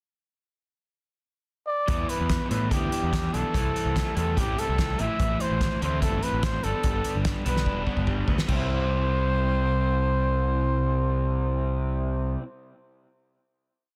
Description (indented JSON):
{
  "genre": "indie rock",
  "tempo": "146 BPM",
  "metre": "4/4",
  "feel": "straight",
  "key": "C major",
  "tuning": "A4 = 440 Hz",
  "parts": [
    { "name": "breathy trumpet", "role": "melody", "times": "1.7-12.3 s", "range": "G4 to E5", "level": "-32 LUFS", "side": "equal", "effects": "digital delay" },
    { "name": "crunchy overdriven guitar", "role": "riff", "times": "1.9-12.4 s", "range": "E3 to G4", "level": "-36 LUFS", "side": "equal", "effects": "none" },
    { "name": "overdriven electric guitar", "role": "riff", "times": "1.9-12.4 s", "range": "G2 to E4", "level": "-34 LUFS", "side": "equal", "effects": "analog chorus, digital delay" },
    { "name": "growling picked electric bass", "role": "bass", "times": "1.9-12.4 s", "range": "E1 to A2", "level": "-30 LUFS", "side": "equal", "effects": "overdrive" },
    { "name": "loose indie drum kit", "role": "drums", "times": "1.9-8.6 s", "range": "crash cymbal, hi-hat, kick drum, snare drum", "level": "-31 LUFS", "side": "equal", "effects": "none" }
  ],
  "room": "little or no reverb",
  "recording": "dense, heavily limited modern master",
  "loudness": "-26 LUFS",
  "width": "mono",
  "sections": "0.2-1.9 pickup bar; 1.9-8.5 pre-chorus; 8.5-11.8 final chord",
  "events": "drum fill 7.7-8.5",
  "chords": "0.2 N.C.; 1.9 Em7; 3.5 C6; 5.0 Am; 6.6 G; 8.5 C"
}